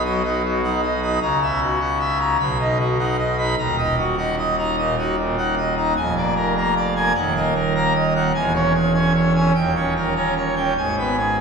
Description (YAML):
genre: classical, organ toccata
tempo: 101 BPM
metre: 4/4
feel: straight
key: unclear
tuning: A4 = 443 Hz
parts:
  - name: pipe organ, full organ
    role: solo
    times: 0.0-11.4 s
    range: D#1 to B5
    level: -18 LUFS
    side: equal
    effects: none
room: wet church reverb, RT60 3.1 s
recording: recorded in a church or concert hall, studio reverb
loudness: -18 LUFS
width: side -5 dB against mid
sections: 0.0-11.4 A section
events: none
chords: 0.0 B; 1.2 F#7/C#; 2.4 B; 3.6 D#m; 6.0 A#7/E#; 7.2 D#m; 8.3 C#m/E; 9.6 D#7; 10.8 G#m